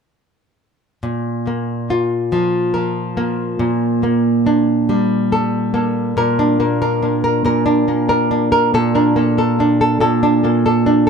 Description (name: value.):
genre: pop.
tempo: 47 BPM (dotted quarters).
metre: 6/8.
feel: straight.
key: Bb major.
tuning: A4 = 443 Hz.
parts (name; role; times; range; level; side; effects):
nylon-string guitar; accompaniment; 1.0-11.1 s; Bb2 to Bb4; -14 LUFS; equal; tape echo.
room: moderate spring reverb, RT60 1.2 s.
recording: echo-heavy mix.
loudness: -14 LUFS.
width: side -6 dB against mid.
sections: 1.0-6.2 A section; 6.2-11.1 B section.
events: none.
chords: 1.0 Bb5; 3.6 Gmadd9/Bb; 6.2 Bb; 8.7 Bbmaj7.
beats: | 1.03 2.32 | 3.60 4.88 | 6.16 7.45 | 8.73 10.01.